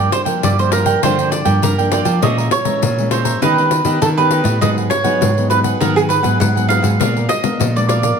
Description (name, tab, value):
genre	samba and choro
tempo	100 BPM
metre	4/4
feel	straight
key	unclear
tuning	A4 = 441 Hz
part	mandolin	melody	0.0-8.2 s	Ab4 to Gb5	-18 LUFS	right 4 dB	none
part	cavaquinho	accompaniment	0.0-8.2 s	Eb4 to Bb5	-22 LUFS	right 8 dB	none
part	nylon-string guitar	accompaniment	0.0-8.2 s	G2 to G4	-22 LUFS	left 7 dB	none
part	nylon-string guitar	bass	0.0-8.1 s	G2 to F3	-18 LUFS	right 1 dB	none
part	pandeiro	percussion	0.1-8.2 s	none	-21 LUFS	left 8 dB	none
room	wet large studio reverb, RT60 1.4 s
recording	none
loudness	-13 LUFS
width	side -6 dB against mid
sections	0.0-8.2 A section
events	none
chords	0.0 Gm7; 2.2 Bbm7b5; 3.4 Ebaug7; 4.6 Abm7; 7.0 Bb7b9